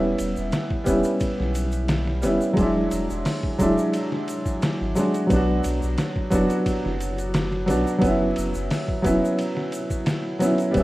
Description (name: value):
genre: trip hop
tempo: 88 BPM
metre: 4/4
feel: straight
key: unclear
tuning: A4 = 440 Hz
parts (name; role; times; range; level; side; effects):
- warm upright piano; accompaniment; 0.0-10.8 s; F#3 to F#4; -22 LUFS; equal; harmonic tremolo, vintage 12-bit sampler grit, tape echo
- soft dub sub bass; bass; 0.0-10.8 s; D1 to B1; -28 LUFS; equal; none
- trip hop sampler-style drum kit; drums; 0.2-10.8 s; hi-hat, kick drum, ride cymbal, snare drum; -28 LUFS; equal; none
- tube shaker; percussion; 0.2-10.8 s; none; -42 LUFS; left 1 dB; none
room: digital ambience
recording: rough home demo mix, vinyl crackle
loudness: -20 LUFS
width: side -17 dB against mid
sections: 0.0-10.8 A section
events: none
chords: 0.0 C#m7b5/E; 2.6 E9; 5.3 Bm; 8.0 F#7sus4